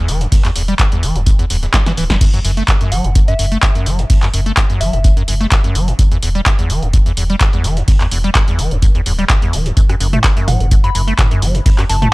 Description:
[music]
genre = acid house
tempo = 127 BPM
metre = 4/4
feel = swing 53% on 16ths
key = unclear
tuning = A4 = 440 Hz
[part]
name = acid bass, square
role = riff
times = 0.0-12.1 s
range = E2 to A3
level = -19 LUFS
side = equal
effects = analog chorus, cassette tape, analog delay
[part]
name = round analog bass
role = bass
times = 0.1-12.1 s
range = D1 to F#1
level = -18 LUFS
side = equal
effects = sidechain pumping
[part]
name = dusty soul sampler-style drum kit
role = drums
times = 0.1-12.0 s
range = hi-hat, snare drum, tambourine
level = -30 LUFS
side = left 1 dB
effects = overdrive, high-pass filter on snare, high-pass filter on perc, high-pass filter on hats
[part]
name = punchy analog drum machine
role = drums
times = 0.1-12.1 s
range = crash cymbal, handclaps, hi-hat, rim click, snare drum, toms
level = -19 LUFS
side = equal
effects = none
[part]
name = electronic kick drum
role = drums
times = 0.3-11.8 s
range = none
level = -13 LUFS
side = equal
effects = none
[part]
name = soft synth bell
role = melody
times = 2.9-5.0, 10.5-12.1 s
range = E5 to B5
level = -24 LUFS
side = left 1 dB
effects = chorus, phaser, vintage 12-bit sampler grit, tape echo
[sound]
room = little or no reverb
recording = dry, gritty hardware recording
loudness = -11 LUFS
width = side -22 dB against mid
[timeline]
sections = 0.0-12.1 A section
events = drum fill 1.7-2.2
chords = 0.0 E7(no3); 2.2 N.C.

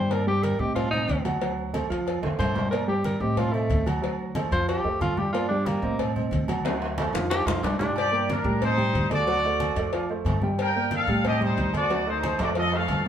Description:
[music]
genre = latin, salsa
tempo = 183 BPM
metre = 4/4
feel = straight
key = G minor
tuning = A4 = 442 Hz
[part]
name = warm tenor saxophone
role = melody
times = 0.0-8.0 s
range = A3 to C5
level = -28 LUFS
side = equal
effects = none
[part]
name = dark grand piano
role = accompaniment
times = 0.0-13.1 s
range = F3 to G5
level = -29 LUFS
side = right 3 dB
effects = none
[part]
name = upright bass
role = bass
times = 0.0-13.1 s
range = D2 to A2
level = -29 LUFS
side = equal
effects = none
[part]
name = agogo bells and timbales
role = percussion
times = 0.1-13.1 s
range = none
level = -34 LUFS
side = right 3 dB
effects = none
[part]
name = congas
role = percussion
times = 0.1-13.1 s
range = none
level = -32 LUFS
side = equal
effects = none
[part]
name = cowbell and bongos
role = percussion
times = 0.1-13.1 s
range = none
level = -34 LUFS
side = left 5 dB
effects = none
[part]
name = clear trumpet section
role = melody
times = 8.0-13.1 s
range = D4 to G5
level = -25 LUFS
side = left 1 dB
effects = none
[sound]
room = wet studio reverb, RT60 0.8 s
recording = band playing live in one room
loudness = -23 LUFS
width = side -9 dB against mid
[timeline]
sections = 0.0-8.0 A section; 8.0-13.1 B section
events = tenor saxophone solo 0.0-8.0; drum fill 2.2-2.7, 6.7-8.0, 11.9-13.1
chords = 0.1 Gmadd9; 0.8 Adim; 1.4 D7; 2.1 F; 2.7 Gmadd9; 3.4 Adim; 4.0 D7; 4.7 F; 5.3 Gmadd9; 6.0 Adim; 6.7 D7; 7.3 F; 8.0 Gmadd9; 8.6 Am7b5; 9.3 D7; 9.9 F; 10.6 Gmadd9; 11.2 Am7b5; 11.9 D7; 12.6 F

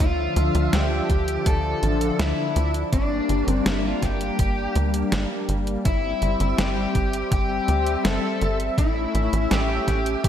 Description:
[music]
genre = synthwave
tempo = 82 BPM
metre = 4/4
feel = straight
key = D minor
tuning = A4 = 439 Hz
[part]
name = smooth overdriven lead guitar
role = melody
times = 0.0-10.3 s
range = D4 to A4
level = -26 LUFS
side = left 2 dB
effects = diffuse ambient delay
[part]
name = warm analog pad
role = sustained chords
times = 0.0-10.3 s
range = D3 to E5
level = -27 LUFS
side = left 1 dB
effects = chorus, tremolo, sidechain pumping
[part]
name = tight sequencer bass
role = bass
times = 0.0-10.3 s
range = G1 to D2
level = -24 LUFS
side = equal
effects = sidechain pumping
[part]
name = detuned 8-bit digital drum machine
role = drums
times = 0.0-10.3 s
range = hi-hat, snare drum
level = -28 LUFS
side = equal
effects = none
[part]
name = electronic kick drum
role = drums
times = 0.0-10.3 s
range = none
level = -22 LUFS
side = equal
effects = none
[sound]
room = moderate lush hall reverb, RT60 1.6 s, digital ambience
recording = dreamy mix soaked in reverb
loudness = -20 LUFS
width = side -10 dB against mid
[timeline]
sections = 0.0-10.3 A section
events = none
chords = 0.0 Dmadd9; 2.9 Gm; 5.9 C/G; 8.8 A

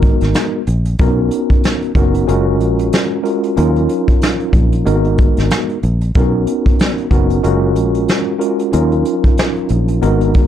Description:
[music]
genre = hip hop, boom-bap hip-hop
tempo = 93 BPM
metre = 4/4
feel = swing 59% on 16ths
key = Eb minor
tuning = A4 = 438 Hz
[part]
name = mellow tine electric piano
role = accompaniment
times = 0.0-10.5 s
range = Gb3 to Bb4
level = -16 LUFS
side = equal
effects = medium stereo tremolo, high-pass filter, low-pass filter
[part]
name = fingered electric bass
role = bass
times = 0.0-10.5 s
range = F#1 to Eb2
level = -15 LUFS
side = equal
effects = none
[part]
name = vintage brush drum kit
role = drums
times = 0.0-10.5 s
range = hi-hat, kick drum, snare drum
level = -14 LUFS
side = equal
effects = none
[sound]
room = light reverb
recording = dry, gritty hardware recording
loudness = -12 LUFS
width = side -10 dB against mid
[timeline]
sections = 0.0-10.5 A section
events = none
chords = 0.0 Abm7; 1.0 Bmaj7; 2.3 Gbmaj7; 3.6 Ebm7; 4.9 Abm7; 6.2 Bmaj7; 7.4 Gbmaj7; 8.7 Ebm7

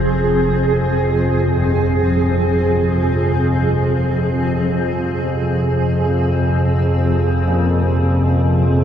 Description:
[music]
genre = ambient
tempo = free time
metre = none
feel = none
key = F minor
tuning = A4 = 443 Hz
[part]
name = granular cloud pad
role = sustained chords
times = 0.0-8.8 s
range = F3 to Ab4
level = -19 LUFS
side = right 1 dB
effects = built-in reverb
[part]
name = analog drone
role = drone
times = 0.0-8.8 s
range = F2 to C3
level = -16 LUFS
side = equal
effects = chorus
[part]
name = carillon bells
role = arpeggios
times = 1.5-8.8 s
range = G2 to Bb3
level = -30 LUFS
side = left 2 dB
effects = none
[sound]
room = moderate huge ambient reverb, RT60 7.2 s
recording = none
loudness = -14 LUFS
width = side -9 dB against mid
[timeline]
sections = 0.0-8.8 A section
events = none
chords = 0.0 Fmadd9

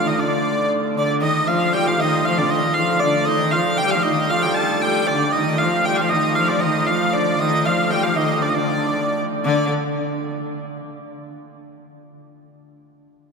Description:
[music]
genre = medieval dance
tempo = 116 BPM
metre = 2/4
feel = straight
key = D phrygian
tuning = A4 = 438 Hz
[part]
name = rich hurdy-gurdy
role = melody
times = 0.0-9.7 s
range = D5 to A5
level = -20 LUFS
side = equal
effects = none
[part]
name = clear viola da gamba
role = second line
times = 0.0-9.7 s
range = C3 to G3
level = -23 LUFS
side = left 2 dB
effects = none
[part]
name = hammered dulcimer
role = second line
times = 0.0-11.4 s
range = D4 to A4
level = -25 LUFS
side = right 5 dB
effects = none
[part]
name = warm hurdy-gurdy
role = drone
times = 0.0-9.5 s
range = D3 to A3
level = -28 LUFS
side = left 1 dB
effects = none
[sound]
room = wet cathedral reverb, RT60 4.7 s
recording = recorded in a church or concert hall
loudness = -17 LUFS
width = side -5 dB against mid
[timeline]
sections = 0.0-1.2 A section; 1.2-9.5 B section; 9.5-10.5 C section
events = none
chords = none

